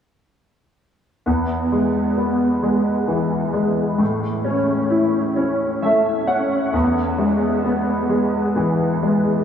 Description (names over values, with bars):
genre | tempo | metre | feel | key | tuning
pop | 44 BPM (dotted quarters) | 6/8 | straight | E major | A4 = 440 Hz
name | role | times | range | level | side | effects
clear concert grand piano | accompaniment | 1.3-9.4 s | E2 to F#5 | -17 LUFS | equal | ensemble chorus
room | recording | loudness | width
wet huge ambient reverb, RT60 6.3 s | dreamy mix soaked in reverb, small room reverb | -17 LUFS | side -8 dB against mid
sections
1.3-9.4 A section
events
grand piano fill 5.4-6.7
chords
1.3 E; 4.0 A; 6.7 E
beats
| 1.27 2.64 | 4.00 5.37 | 6.74 8.11